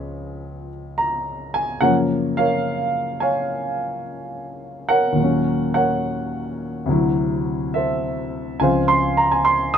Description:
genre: solo jazz.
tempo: 71 BPM.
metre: 4/4.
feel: swing 68% on 8ths, rubato.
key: unclear.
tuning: A4 = 440 Hz.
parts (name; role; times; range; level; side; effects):
warm baby grand piano; solo; 0.0-9.8 s; Db2 to Eb6; -19 LUFS; equal; none.
room: moderate studio reverb, RT60 0.6 s.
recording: band playing live in one room.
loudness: -18 LUFS.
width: side -8 dB against mid.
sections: 0.0-9.8 A section.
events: none.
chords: 0.0 Db7; 1.8 Gbmaj7; 5.2 Ebm7; 6.9 D9; 8.6 Dbmaj7.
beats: 0.14 0.98 | 1.82 2.65 3.49 4.33 | 5.17 6.02 6.88 7.75 | 8.61 9.47.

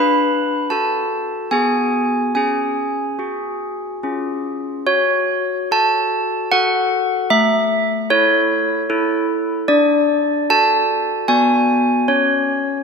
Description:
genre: classical, tune for handbells.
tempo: 74 BPM.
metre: 3/4.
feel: straight.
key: F# minor.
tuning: A4 = 440 Hz.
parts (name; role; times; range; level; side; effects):
handbells; solo; 0.0-12.8 s; A3 to B5; -15 LUFS; equal; none.
room: wet church reverb, RT60 2.8 s.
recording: none.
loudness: -15 LUFS.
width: side -5 dB against mid.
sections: 0.0-4.9 A section; 4.9-12.8 B section.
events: none.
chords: 0.0 D; 1.5 G#m7/B; 2.3 C#sus4; 4.0 C#; 4.9 F#m; 7.3 A; 9.7 D; 11.3 G#m7b5/B; 12.1 N.C..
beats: 0.70 1.51 | 2.34 3.19 4.02 | 4.86 5.70 6.50 | 7.30 8.09 8.88 | 9.67 10.48 11.28 | 12.08.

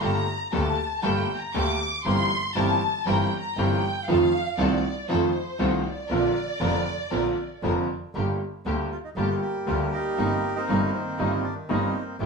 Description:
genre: tango.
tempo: 118 BPM.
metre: 4/4.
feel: rubato.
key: Bb major, G minor from 8.2 s.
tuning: A4 = 440 Hz.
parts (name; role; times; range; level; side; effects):
warm studio violin section; second line; 0.0-7.9 s; C5 to D6; -29 LUFS; left 1 dB; none.
bright upright piano; accompaniment; 0.0-12.3 s; F1 to G4; -25 LUFS; equal; none.
warm studio string section; stabs; 0.0-12.3 s; A3 to Bb4; -34 LUFS; right 1 dB; none.
rich double bass; bass; 0.0-12.3 s; F1 to F2; -29 LUFS; right 1 dB; none.
bandoneon; melody; 8.9-12.2 s; Eb3 to G4; -29 LUFS; right 2 dB; none.
room: wet studio reverb, RT60 0.7 s.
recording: band playing live in one room.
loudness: -23 LUFS.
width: side -4 dB against mid.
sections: 0.0-8.2 A section; 8.2-12.3 B section.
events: violin section solo 0.0-8.2.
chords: 0.0 Gmadd9; 2.1 C7/G; 4.1 F7; 6.1 Bbadd9; 8.2 Gm; 10.2 Cm7/G.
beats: | 0.02 0.53 1.04 1.54 | 2.05 2.56 3.07 3.58 | 4.08 4.59 5.09 5.60 | 6.10 6.61 7.12 7.64 | 8.15 8.66 9.17 9.68 | 10.19 10.69 11.19 11.70 | 12.20.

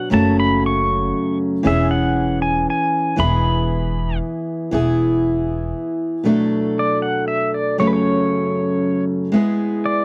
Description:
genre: acoustic folk duo or small band.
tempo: 117 BPM.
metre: 3/4.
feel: straight.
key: unclear.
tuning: A4 = 440 Hz.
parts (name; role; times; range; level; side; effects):
pedal steel guitar; melody; 0.0-4.2, 6.8-10.0 s; B4 to C#6; -24 LUFS; equal; none.
picked steel-string acoustic guitar; accompaniment; 0.0-10.0 s; F#2 to A4; -21 LUFS; equal; none.
upright bass; bass; 0.1-5.7 s; E1 to F#1; -24 LUFS; equal; none.
room: little or no reverb.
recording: dry, close 1970s-style studio recording.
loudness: -19 LUFS.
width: mono.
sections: 0.0-4.7 A section; 4.7-6.3 B section; 6.3-10.0 C section.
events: none.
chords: 0.1 F#m; 1.7 C#m7/E; 3.2 E; 6.3 Bm7; 7.8 F#m; 9.3 E/G#.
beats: | 0.12 0.63 1.14 | 1.65 2.17 2.68 | 3.19 3.70 4.21 | 4.72 5.24 5.75 | 6.26 6.78 7.29 | 7.80 8.32 8.83 | 9.34 9.86.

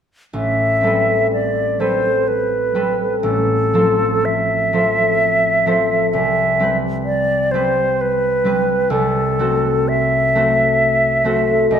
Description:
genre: classical, impressionist duo for flute and harp.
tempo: 63 BPM.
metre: 3/4.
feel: uneven beats, rubato.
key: A minor.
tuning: A4 = 441 Hz.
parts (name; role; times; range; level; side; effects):
silver concert flute; melody; 0.3-11.8 s; A4 to E5; -16 LUFS; equal; none.
concert harp; accompaniment; 0.3-11.8 s; A1 to C5; -18 LUFS; equal; none.
room: wet scoring stage reverb, RT60 1.7 s.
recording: minimal, uncompressed stereo recording.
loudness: -14 LUFS.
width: side -8 dB against mid.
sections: 0.3-11.8 A section.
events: none.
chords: 0.3 Am9; 3.2 Fmaj7/A; 6.1 C5; 8.9 Am6/C.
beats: | 0.34 1.31 2.27 | 3.22 4.24 5.18 | 6.12 7.05 7.98 | 8.90 9.88 10.80 | 11.71.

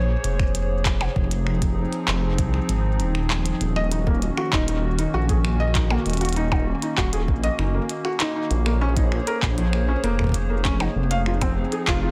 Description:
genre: IDM.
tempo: 98 BPM.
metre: 4/4.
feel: straight.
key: Eb dorian.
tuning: A4 = 440 Hz.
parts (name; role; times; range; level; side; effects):
warbly tape-like pad; sustained chords; 0.0-12.1 s; Eb3 to Db5; -31 LUFS; equal; chorus, built-in reverb.
dark detuned saw bass; bass; 0.0-12.1 s; Eb1 to C2; -25 LUFS; equal; none.
glitchy drum kit; drums; 0.2-12.0 s; finger snaps, handclaps, hi-hat, percussion blips; -30 LUFS; equal; studio reverb, tape echo.
electronic kick drum; drums; 0.4-12.0 s; none; -26 LUFS; equal; studio reverb.
felt-muted upright piano; arpeggios; 3.8-12.1 s; F3 to F5; -30 LUFS; equal; digital delay.
room: light reverb, digital ambience.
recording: dense, heavily limited modern master.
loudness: -22 LUFS.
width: mono.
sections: 0.0-12.1 A section.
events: none.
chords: 0.0 Bbm9; 1.2 Fm7; 3.6 Ebm7; 8.5 Bbm9; 11.0 Fm7.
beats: 0.55 | 1.16 1.77 2.38 3.00 | 3.61 4.22 4.83 5.45 | 6.06 6.67 7.28 7.89 | 8.51 9.12 9.73 10.34 | 10.96 11.57.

